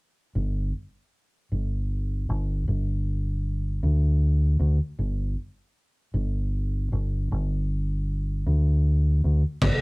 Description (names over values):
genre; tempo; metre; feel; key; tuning
slow blues; 52 BPM (dotted quarters); 12/8; straight; unclear; A4 = 443 Hz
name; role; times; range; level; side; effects
deep dub fingered electric bass; bass; 0.4-9.8 s; G1 to D2; -23 LUFS; equal; none
vintage drum kit; drums; 9.6-9.8 s; crash cymbal, kick drum; -20 LUFS; equal; none
room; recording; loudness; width
light reverb; rough rehearsal-room recording; -23 LUFS; side -27 dB against mid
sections
0.3-9.6 A section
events
none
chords
none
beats
| 0.35 1.51 2.67 3.83 | 4.98 6.14 7.30 8.46 | 9.62